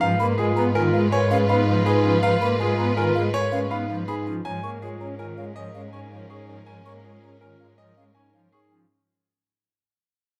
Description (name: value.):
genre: classical, minimalist pattern music.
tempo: 162 BPM.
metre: 6/4.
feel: straight.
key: unclear.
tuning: A4 = 439 Hz.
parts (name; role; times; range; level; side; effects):
bright concert grand piano; melody; 0.0-8.8 s; G#4 to G#5; -30 LUFS; equal; none.
mellow French horn; second line; 0.0-8.7 s; B4 to C#5; -31 LUFS; equal; none.
pipe organ, foundations; accompaniment; 0.0-8.9 s; D#3 to C#4; -32 LUFS; equal; none.
warm studio violin section; sustained chords; 0.0-8.7 s; C#4 to B4; -35 LUFS; equal; none.
mellow hollow concert flute; arpeggios; 0.0-8.8 s; E#5 to C#6; -34 LUFS; equal; none.
vibraphone with soft mallets; arpeggios; 0.0-9.0 s; C#4 to C#5; -31 LUFS; equal; none.
rich cello; bass; 0.0-8.8 s; G#2; -29 LUFS; equal; none.
room: moderate scoring stage reverb, RT60 1.7 s.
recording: close, detailed microphones.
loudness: -22 LUFS.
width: mono.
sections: 0.0-8.9 A section.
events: fade-out 0.0-8.9.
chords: 0.0 G#m69; 4.5 A#m7/G#.